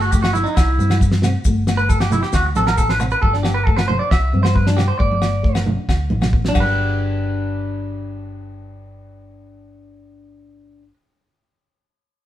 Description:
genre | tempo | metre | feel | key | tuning
highlife guitar band | 135 BPM | 4/4 | straight | G major | A4 = 436 Hz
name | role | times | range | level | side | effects
nylon-string guitar | accompaniment | 0.0-6.8 s | G3 to E4 | -28 LUFS | left 3 dB | none
clean electric guitar | arpeggios | 0.0-10.9 s | D4 to E5 | -21 LUFS | right 1 dB | none
hollow-body short-scale fingered electric bass | bass | 0.0-10.9 s | G1 to G2 | -20 LUFS | equal | none
maracas | percussion | 0.0-3.2 s | none | -36 LUFS | left 5 dB | none
damped 70s drum kit | drums | 0.1-6.7 s | crash cymbal, kick drum, snare drum | -19 LUFS | equal | none
agogo bells | percussion | 0.2-6.9 s | none | -31 LUFS | equal | none
congas | percussion | 0.3-7.0 s | none | -25 LUFS | right 2 dB | none
room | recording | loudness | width
light reverb | band playing live in one room | -15 LUFS | side -12 dB against mid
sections
0.0-6.8 A section; 6.8-10.4 B section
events
clean electric guitar solo 0.0-6.8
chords
0.0 Gsus2; 0.6 C; 1.5 Gsus2; 2.3 D5; 3.2 Gsus2; 4.1 C5; 5.0 Gsus2; 5.9 Dsus2; 6.6 G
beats
0.13 0.57 1.01 | 1.45 1.89 2.33 2.78 | 3.22 3.66 4.11 4.55 | 4.99 5.44 5.88 6.33 | 6.78 7.22 7.67 8.11 | 8.56 9.01 9.46 9.90

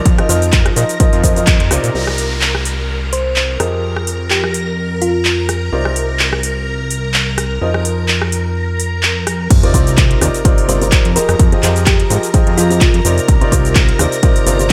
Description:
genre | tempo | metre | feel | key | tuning
piano house | 127 BPM | 4/4 | swing 55% on 16ths | C minor | A4 = 440 Hz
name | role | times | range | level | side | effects
string machine, violins | sustained chords | 0.0-14.7 s | Bb4 to Bb5 | -27 LUFS | equal | ensemble chorus, sidechain pumping
clear grand piano | riff | 0.0-14.7 s | C3 to Eb5 | -22 LUFS | equal | sidechain pumping, low-pass filter, dub echo
fat analog bass | bass | 0.1-14.7 s | G1 to Bb2 | -20 LUFS | equal | sidechain pumping
electronic kick drum | drums | 0.1-1.6, 9.5-14.7 s | none | -14 LUFS | equal | none
house drum kit | drums | 0.1-14.7 s | crash cymbal, handclaps, hi-hat, rim click, shaker | -20 LUFS | equal | none
downlifter and sub drop | sound effects | 1.9-5.7, 9.5-11.4 s | none | -26 LUFS | equal | none
thumb-piano-like synth pluck | melody | 3.1-5.4, 10.7-12.9 s | F4 to C5 | -23 LUFS | equal | chorus, dub echo
room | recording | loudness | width
light reverb, digital ambience | none | -14 LUFS | mono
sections
0.0-1.9 A section; 1.9-9.5 B section; 9.5-14.7 C section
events
band accent 1.5; filter sweep on grand piano 1.9-9.5; drop 9.5-14.7; impact 9.5-11.4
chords
0.1 Cm11; 3.6 Fm9; 5.7 Cm11; 7.6 F7sus4; 9.5 Cm11; 11.2 Fm9; 13.3 Cm11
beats
| 0.06 0.53 1.00 1.47 | 1.95 2.42 2.89 3.36 | 3.84 4.31 4.78 5.25 | 5.72 6.20 6.67 7.14 | 7.62 8.09 8.56 9.03 | 9.51 9.98 10.45 10.92 | 11.39 11.87 12.34 12.81 | 13.28 13.76 14.23 14.70

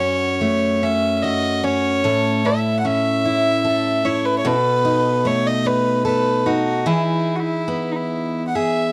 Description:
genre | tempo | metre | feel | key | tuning
celtic folk, Celtic slow air | 74 BPM | 3/4 | rubato | E major | A4 = 440 Hz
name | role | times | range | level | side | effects
rich fiddle | melody | 0.0-8.9 s | D#4 to F#5 | -22 LUFS | equal | none
picked steel-string acoustic guitar | accompaniment | 0.0-8.9 s | F#2 to A4 | -22 LUFS | equal | none
room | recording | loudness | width
light reverb | dark, warm production | -19 LUFS | mono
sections
0.0-8.9 A section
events
none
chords
0.0 F#m; 2.0 A; 4.5 B7; 6.9 Emaj7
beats
0.41 1.24 | 2.04 2.85 3.65 | 4.45 5.25 6.05 | 6.85 7.67 8.55

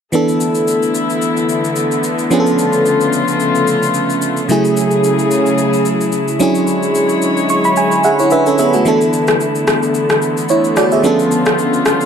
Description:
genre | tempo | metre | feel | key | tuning
amapiano | 110 BPM | 4/4 | swing 55% on 16ths | unclear | A4 = 436 Hz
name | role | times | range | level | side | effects
FM electric piano | accompaniment | 0.1-12.1 s | C#3 to C#6 | -14 LUFS | right 2 dB | chorus
warm studio string section | sustained chords | 0.1-12.1 s | C#3 to C#5 | -17 LUFS | left 3 dB | none
electronic shaker and rim click | drums | 0.1-12.1 s | none | -20 LUFS | left 2 dB | none
room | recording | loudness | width
moderate plate reverb, RT60 1.6 s | none | -12 LUFS | side -7 dB against mid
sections
0.1-12.1 A section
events
FM electric piano fill 7.2-8.9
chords
0.1 E7sus4; 2.3 C#7b9b13; 4.5 F#m9/C#; 6.4 Dmaj9#11; 11.0 C#7b9b13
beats
| 0.13 0.67 1.22 1.76 | 2.31 2.86 3.40 3.95 | 4.49 5.04 5.58 6.13 | 6.67 7.22 7.76 8.31 | 8.86 9.40 9.95 10.49 | 11.04 11.58

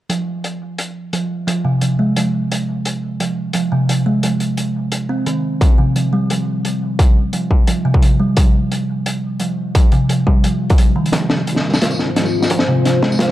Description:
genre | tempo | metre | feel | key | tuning
half-time drum and bass | 174 BPM | 4/4 | half-time | F minor | A4 = 440 Hz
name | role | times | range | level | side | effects
kalimba | arpeggios | 0.1-13.3 s | C3 to C4 | -18 LUFS | right 1 dB | low-pass filter, dub echo
crunchy breakbeat drum kit | drums | 0.1-13.3 s | hi-hat, snare drum, tambourine | -20 LUFS | left 1 dB | none
electronic kick drum | drums | 5.6-13.1 s | none | -13 LUFS | equal | distortion, high-pass filter on kick
dark analog pad | sustained chords | 11.6-13.3 s | Ab3 to F5 | -20 LUFS | left 3 dB | chorus, phaser, vintage 12-bit sampler grit, sidechain pumping
deep soft wobble bass | bass | 11.1-13.3 s | F1 to C2 | -25 LUFS | left 1 dB | chorus, high-pass filter
room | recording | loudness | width
moderate lush hall reverb, RT60 2.1 s | dark, warm production | -14 LUFS | side -14 dB against mid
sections
0.1-11.1 A section; 11.1-13.3 B section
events
build-up 11.1-13.3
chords
0.1 F5; 5.6 Csus4 (rootless); 11.1 Fm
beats
| 0.09 0.44 0.78 1.13 | 1.47 1.82 2.16 2.51 | 2.85 3.20 3.54 3.89 | 4.23 4.58 4.92 5.27 | 5.61 5.96 6.30 6.65 | 6.99 7.34 7.68 8.03 | 8.37 8.71 9.06 9.40 | 9.75 10.09 10.44 10.78 | 11.13 11.47 11.82 12.16 | 12.51 12.85 13.20

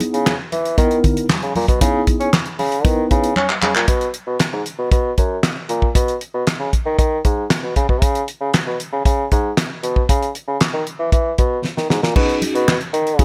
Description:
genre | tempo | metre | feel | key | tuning
early-eighties boogie funk | 116 BPM | 4/4 | straight | B major | A4 = 441 Hz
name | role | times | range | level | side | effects
mellow tine electric piano | accompaniment | 0.0-3.3, 12.2-13.2 s | B3 to B4 | -24 LUFS | equal | none
damped 70s drum kit | drums | 0.0-13.2 s | crash cymbal, handclaps, hi-hat, kick drum, snare drum | -20 LUFS | equal | gated reverb
congas | percussion | 0.0-3.7, 12.2-13.2 s | none | -28 LUFS | equal | none
mellow bassoon | bass | 0.1-13.2 s | F#2 to C#4 | -22 LUFS | equal | none
room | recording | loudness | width
little or no reverb | none | -18 LUFS | mono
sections
0.0-3.9 A section; 3.9-12.2 B section; 12.2-13.2 A section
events
drum fill 3.4-3.9, 11.6-12.2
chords
0.0 C#m7; 3.9 B; 7.8 C#m7; 12.2 B69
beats
0.26 0.78 1.30 | 1.81 2.33 2.85 3.37 | 3.88 4.40 4.92 5.43 | 5.95 6.47 6.99 7.50 | 8.02 8.54 9.05 9.57 | 10.09 10.61 11.12 11.64 | 12.16 12.68 13.19

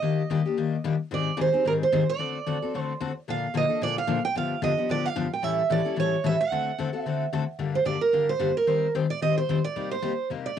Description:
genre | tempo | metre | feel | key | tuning
jazz | 222 BPM | 4/4 | swing 56% on 8ths | G minor | A4 = 440 Hz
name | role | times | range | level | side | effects
picked steel-string acoustic guitar | melody | 0.0-10.6 s | Bb4 to G5 | -26 LUFS | right 6 dB | cassette tape
picked steel-string acoustic guitar | accompaniment | 0.0-10.6 s | G2 to C5 | -27 LUFS | left 6 dB | cassette tape
room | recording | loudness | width
wet booth ambience, RT60 0.2 s | home recording on cassette | -23 LUFS | side -9 dB against mid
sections
0.0-7.6 A section; 7.6-10.6 B section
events
steel-string acoustic guitar solo 7.6-10.6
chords
0.0 Ebmaj7; 1.1 Abmaj7; 2.2 D7; 3.3 Bbmaj7; 4.4 G7; 5.4 A7; 6.5 D7; 7.6 Gm; 8.7 Eb6; 9.8 Cm7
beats
| 0.03 0.30 0.57 0.84 | 1.11 1.38 1.65 1.92 | 2.19 2.46 2.73 3.01 | 3.28 3.55 3.82 4.09 | 4.36 4.63 4.90 5.17 | 5.44 5.71 5.98 6.25 | 6.52 6.79 7.06 7.33 | 7.60 7.87 8.14 8.41 | 8.68 8.95 9.22 9.49 | 9.76 10.03 10.30 10.57

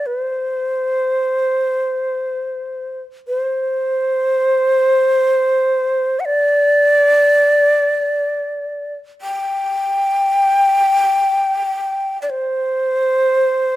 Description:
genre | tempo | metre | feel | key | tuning
japanese traditional, Japanese chamber music | free time | none | none | unclear | A4 = 440 Hz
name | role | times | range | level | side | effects
mellow shakuhachi | solo | 0.0-13.8 s | C5 to G5 | -15 LUFS | equal | none
room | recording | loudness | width
light reverb | close, detailed microphones | -14 LUFS | side -15 dB against mid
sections
0.0-13.8 A section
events
none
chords
none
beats
free time

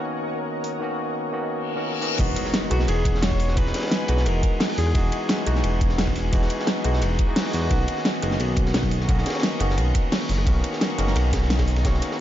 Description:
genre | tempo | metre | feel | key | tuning
liquid drum and bass | 174 BPM | 4/4 | straight | E lydian | A4 = 441 Hz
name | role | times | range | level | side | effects
barky tine electric piano | accompaniment | 0.0-12.2 s | D#3 to F#4 | -28 LUFS | left 1 dB | digital delay
shimmering ambient pad | sustained chords | 0.0-12.2 s | A#4 to C#6 | -33 LUFS | equal | chorus, built-in reverb, sidechain pumping
pop drum kit | drums | 0.6-12.1 s | crash cymbal, hi-hat, rim click, snare drum | -27 LUFS | equal | overdrive
reverse cymbal and impact | sound effects | 1.6-3.6 s | none | -32 LUFS | left 3 dB | none
smooth synth bass | bass | 2.2-12.0 s | E1 to E2 | -23 LUFS | equal | none
crunchy breakbeat drum kit | drums | 2.2-12.2 s | hi-hat, ride cymbal, snare drum | -32 LUFS | equal | high-pass filter on cymbals, high-pass filter on hats, high-pass filter on snare, high-pass filter on room
electronic kick drum | drums | 2.2-11.9 s | none | -23 LUFS | equal | none
breathy alto saxophone | melody | 2.7-5.4 s | F#4 to C#5 | -31 LUFS | left 1 dB | digital delay
room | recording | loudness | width
light reverb | dark, warm production, nothing above 7.5 kHz | -20 LUFS | side -12 dB against mid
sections
0.0-2.2 A section; 2.2-12.2 B section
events
reverse cymbal 1.6-2.2; drop 2.2-12.2; impact 2.2-3.6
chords
0.0 Bmaj9; 2.2 Emaj9; 7.7 Bmaj9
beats
0.12 0.47 | 0.81 1.16 1.50 1.85 | 2.19 2.54 2.88 3.23 | 3.57 3.92 4.26 4.61 | 4.95 5.29 5.64 5.99 | 6.33 6.67 7.02 7.36 | 7.71 8.05 8.40 8.74 | 9.09 9.43 9.78 10.12 | 10.47 10.81 11.16 11.50 | 11.85 12.19

